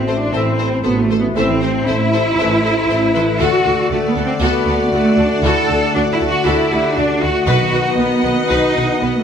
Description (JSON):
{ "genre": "cinematic", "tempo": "118 BPM", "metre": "4/4", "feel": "straight", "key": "unclear", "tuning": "A4 = 440 Hz", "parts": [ { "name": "dark clarinet", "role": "second line", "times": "0.0-9.2 s", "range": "D4 to C5", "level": "-25 LUFS", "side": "left 2 dB", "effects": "none" }, { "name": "hollow flute section", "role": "second line", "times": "0.0-9.2 s", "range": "A4 to A5", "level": "-25 LUFS", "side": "left 4 dB", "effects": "none" }, { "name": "concert harp", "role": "arpeggios", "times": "0.0-9.2 s", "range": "A2 to D#6", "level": "-26 LUFS", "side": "left 10 dB", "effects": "none" }, { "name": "clear symphonic double bass section", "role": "bass", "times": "0.0-9.1 s", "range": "A1 to D2", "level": "-21 LUFS", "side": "right 3 dB", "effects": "none" }, { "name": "rich symphonic cello section", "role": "bass", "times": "0.0-9.2 s", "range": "A3 to A4", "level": "-17 LUFS", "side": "right 2 dB", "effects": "none" }, { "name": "clear studio violin section", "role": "melody", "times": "0.1-9.2 s", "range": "C5 to D#5", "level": "-27 LUFS", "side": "left 4 dB", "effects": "none" }, { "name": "rich symphonic violin section", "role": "second line", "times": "0.1-9.1 s", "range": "F#4 to C5", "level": "-28 LUFS", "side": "left 4 dB", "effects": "none" }, { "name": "rich symphonic viola section", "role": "accompaniment", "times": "0.1-9.1 s", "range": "F#4 to B4", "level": "-26 LUFS", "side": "equal", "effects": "none" }, { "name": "dark trombone section", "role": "sustained chords", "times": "0.3-9.2 s", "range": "D3 to B3", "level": "-27 LUFS", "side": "right 3 dB", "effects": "none" }, { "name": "mellow French horn section", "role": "sustained chords", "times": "0.3-9.2 s", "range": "F#4 to D5", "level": "-25 LUFS", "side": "left 5 dB", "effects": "none" }, { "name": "clear trumpet section", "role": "stabs", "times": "0.3-9.2 s", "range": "E5 to F#5", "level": "-27 LUFS", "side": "left 1 dB", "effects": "none" }, { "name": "timpani", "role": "percussion", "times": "7.5-8.2 s", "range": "B2", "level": "-26 LUFS", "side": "right 1 dB", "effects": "none" } ], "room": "wet recital hall reverb, RT60 1.7 s", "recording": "none", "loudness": "-13 LUFS", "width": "side -8 dB against mid", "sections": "0.0-9.2 A section", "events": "none", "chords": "0.0 Am; 3.4 D; 7.5 B" }